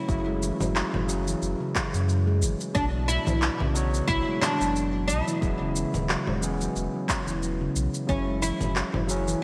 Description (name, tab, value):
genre	organic downtempo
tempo	90 BPM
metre	4/4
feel	swing 55% on 16ths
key	F# minor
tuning	A4 = 438 Hz
part	oud	melody	0.0-9.4 s	C#4 to E4	-32 LUFS	equal	vintage 12-bit sampler grit, digital delay
part	overdriven tine electric piano	accompaniment	0.0-9.4 s	B2 to C#5	-35 LUFS	equal	sidechain pumping, digital delay
part	handpan	arpeggios	0.1-9.4 s	C#3 to G#3	-33 LUFS	equal	digital delay
part	warm sub bass	bass	0.1-9.4 s	E1 to F#2	-31 LUFS	equal	sidechain pumping
part	electronic kick drum	drums	0.1-8.2 s	none	-32 LUFS	equal	small room ambience
part	electronic shaker, congas and handclaps	drums	0.1-9.4 s	none	-33 LUFS	equal	small room ambience, gated reverb
room	moderate lush hall reverb, RT60 2.8 s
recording	bright 1980s-style digital production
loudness	-26 LUFS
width	mono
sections	0.0-9.4 A section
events	none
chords	0.0 F#m7; 2.8 Bm7; 5.4 E6; 8.1 F#7(no3)